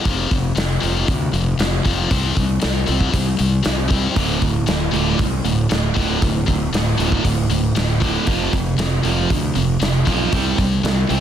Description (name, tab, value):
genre	hard rock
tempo	117 BPM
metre	4/4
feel	straight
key	D minor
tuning	A4 = 440 Hz
part	heavy high-gain guitar	riff	0.0-11.2 s	D2 to C4	-22 LUFS	left 6 dB	distortion
part	fuzz fingered electric bass	bass	0.1-11.2 s	D1 to D2	-22 LUFS	equal	overdrive
part	big rock drum kit	drums	0.1-11.2 s	hi-hat, kick drum, snare drum	-21 LUFS	equal	soft clipping on kick
part	crunchy overdriven guitar	riff	4.2-11.2 s	D2 to C4	-22 LUFS	right 9 dB	none
room	light reverb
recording	dense, heavily limited modern master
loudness	-16 LUFS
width	side -10 dB against mid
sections	0.0-11.2 A section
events	none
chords	0.0 F5; 2.1 C5; 4.2 D5; 8.3 F5; 10.3 C5